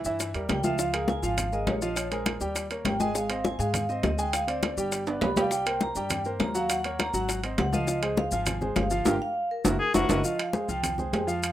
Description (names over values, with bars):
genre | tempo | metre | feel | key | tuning
latin, salsa | 203 BPM | 4/4 | straight | F minor | A4 = 440 Hz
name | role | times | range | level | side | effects
vibraphone with medium hard mallets | melody | 0.0-11.5 s | Bb4 to B5 | -32 LUFS | right 1 dB | plate reverb
upright bass | bass | 0.0-11.5 s | Gb1 to Ab2 | -34 LUFS | equal | none
maracas | percussion | 0.0-11.5 s | none | -37 LUFS | left 4 dB | none
clear grand piano | accompaniment | 0.1-11.5 s | E3 to Ab5 | -31 LUFS | right 1 dB | plate reverb
bongos | percussion | 0.1-10.2 s | none | -34 LUFS | left 5 dB | none
congas | percussion | 0.2-11.5 s | none | -31 LUFS | left 3 dB | none
timbales | percussion | 0.2-11.5 s | none | -31 LUFS | right 5 dB | none
warm cor anglais | second line | 9.8-10.2 s | Gb4 to Ab4 | -27 LUFS | left 3 dB | plate reverb
room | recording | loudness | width
light reverb | rough home demo mix | -25 LUFS | side -12 dB against mid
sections
0.8-10.2 A section; 10.2-11.5 B section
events
drum fill 5.1-5.5, 9.1-10.2; band accent 9.1-10.2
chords
0.0 C7 (rootless); 0.8 Db6; 2.0 Bb5; 2.6 Eb7; 3.1 Ab; 4.3 Fm69 (rootless); 4.9 G; 5.5 Cm7; 6.7 Ebm7; 7.3 Ab7; 7.9 Dbmaj7; 9.1 Gm7; 9.7 Gb7; 10.2 Fm